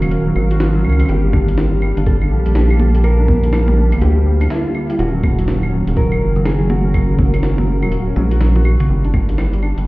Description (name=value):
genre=IDM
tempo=123 BPM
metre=4/4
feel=swing 62% on 16ths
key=unclear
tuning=A4 = 440 Hz
part: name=mellow electric guitar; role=melody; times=0.0-8.4 s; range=F4 to Bb4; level=-23 LUFS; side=left 1 dB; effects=digital delay
part: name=glassy FM pad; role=sustained chords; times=0.0-8.9 s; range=D3 to A5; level=-24 LUFS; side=right 1 dB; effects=ensemble chorus, built-in reverb, vintage 12-bit sampler grit
part: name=felt-muted upright piano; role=arpeggios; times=0.0-9.8 s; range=Db3 to Gb4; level=-23 LUFS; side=left 2 dB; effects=ping-pong delay
part: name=rubbery square bass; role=bass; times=0.0-9.9 s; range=Eb1 to D2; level=-15 LUFS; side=equal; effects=none
part: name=jungle sampler-style drum kit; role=drums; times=0.0-9.9 s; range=claves, hi-hat, snare drum, toms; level=-24 LUFS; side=equal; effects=digital delay
part: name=bubbling stepped-filter texture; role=texture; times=0.0-8.9 s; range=F5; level=-38 LUFS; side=right 2 dB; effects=chorus, built-in reverb
part: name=electronic kick drum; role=drums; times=1.3-9.3 s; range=none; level=-16 LUFS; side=equal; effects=none
room=digital ambience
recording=heard muffled through a wall, stone room reverb, EQ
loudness=-13 LUFS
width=side -20 dB against mid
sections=0.0-8.9 A section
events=drum fill 8.2-8.9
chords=0.0 Ebm7; 1.1 Gmadd9; 5.0 Ebm7; 8.9 G5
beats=0.11 0.60 | 1.09 1.58 2.06 2.55 | 3.04 3.53 4.02 4.50 | 4.99 5.48 5.97 6.46 | 6.94 7.43 7.92 8.41 | 8.89 9.38 9.87